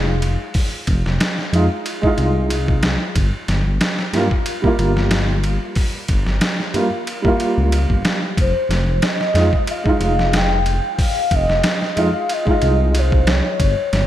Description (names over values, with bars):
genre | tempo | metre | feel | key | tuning
trip hop | 92 BPM | 4/4 | swing 55% on 16ths | F minor | A4 = 441 Hz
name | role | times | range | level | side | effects
dark upright piano | accompaniment | 0.0-13.6 s | G3 to F4 | -22 LUFS | right 1 dB | tremolo, tape echo
dark detuned saw bass | bass | 0.0-14.1 s | F1 to G2 | -18 LUFS | equal | tube saturation
trip hop sampler-style drum kit | drums | 0.2-14.1 s | hi-hat, kick drum, ride cymbal, snare drum | -20 LUFS | equal | none
pure breathy sine lead | melody | 8.4-14.1 s | C5 to G5 | -21 LUFS | left 1 dB | wide subtle chorus, dub echo
room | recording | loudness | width
moderate lush hall reverb, RT60 2.5 s | dreamy mix soaked in reverb | -15 LUFS | side -12 dB against mid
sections
0.0-14.1 A section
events
none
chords
0.0 Fm7; 3.2 Gm7; 8.4 Fm7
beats
| 0.55 1.21 1.86 2.51 | 3.16 3.81 4.47 5.12 | 5.77 6.42 7.08 7.73 | 8.38 9.03 9.68 10.34 | 10.99 11.64 12.29 12.95 | 13.60